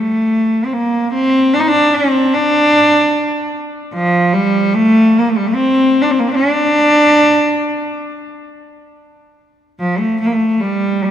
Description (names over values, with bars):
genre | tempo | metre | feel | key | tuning
caucasian folk, Caucasian lament | 74 BPM | 3/4 | rubato | D minor | A4 = 444 Hz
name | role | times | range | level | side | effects
rich cello | solo | 0.0-11.1 s | F3 to Eb4 | -11 LUFS | equal | none
room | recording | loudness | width
moderate church reverb, RT60 3.4 s | minimal, uncompressed stereo recording | -11 LUFS | side -10 dB against mid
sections
0.0-8.9 A section; 8.9-11.1 B section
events
none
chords
none